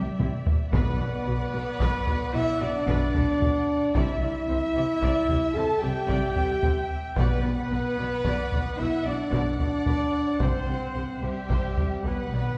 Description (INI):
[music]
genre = cinematic, epic orchestral film score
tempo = 74 BPM (dotted quarters)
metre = 12/8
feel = straight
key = B phrygian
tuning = A4 = 437 Hz
[part]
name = rich symphonic violin section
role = melody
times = 0.0-12.6 s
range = E5 to F#5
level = -44 LUFS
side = equal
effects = none
[part]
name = warm symphonic violin section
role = second line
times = 0.0-12.6 s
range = G4 to A5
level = -40 LUFS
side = equal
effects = none
[part]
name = rich symphonic viola section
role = accompaniment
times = 0.0-12.4 s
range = E4 to D5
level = -42 LUFS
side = equal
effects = none
[part]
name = mellow French horn section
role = sustained chords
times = 0.0-12.6 s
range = G3 to A4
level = -31 LUFS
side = equal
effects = none
[part]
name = clear trumpet section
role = stabs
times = 0.0-12.6 s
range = G4 to A5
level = -35 LUFS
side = equal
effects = none
[part]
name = rich symphonic cello section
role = bass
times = 0.2-12.4 s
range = B2 to C3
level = -36 LUFS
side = equal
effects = none
[part]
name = rich symphonic double bass section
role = bass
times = 0.2-12.4 s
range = B1 to C2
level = -35 LUFS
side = equal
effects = none
[part]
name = solo taiko drums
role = drums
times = 0.2-12.0 s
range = none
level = -30 LUFS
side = equal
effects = none
[part]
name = timpani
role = percussion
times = 0.7-1.5, 7.2-12.6 s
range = B2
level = -37 LUFS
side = equal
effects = none
[sound]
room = wet scoring stage reverb, RT60 1.8 s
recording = heard from further back in the room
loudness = -26 LUFS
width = mono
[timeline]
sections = 0.0-12.6 A section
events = drum fill 0.0-0.7; timpani fill 12.0-12.6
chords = 0.0 Cadd9; 0.7 Bm; 4.0 Cadd9; 7.2 Bm; 10.4 C; 12.0 Bmadd9